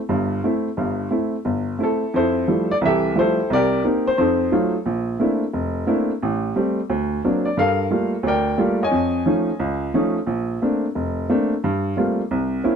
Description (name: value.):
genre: jazz.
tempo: 177 BPM.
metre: 4/4.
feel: swing 64% on 8ths.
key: F major.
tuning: A4 = 440 Hz.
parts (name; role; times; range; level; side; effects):
warm upright piano; solo; 0.1-12.8 s; F1 to Ab5; -18 LUFS; equal; none.
room: light reverb.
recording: dark, warm production.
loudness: -18 LUFS.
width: side -7 dB against mid.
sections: 0.0-2.1 A section; 2.1-12.8 B section.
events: none.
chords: 0.0 C6; 2.1 Fmaj9; 3.5 Cm7; 4.2 F7b9; 4.9 Bbmaj9#11; 6.2 Am7; 6.9 D7b13; 7.6 Gm9; 8.9 F7alt; 10.3 Bbmaj9; 11.6 Gm11.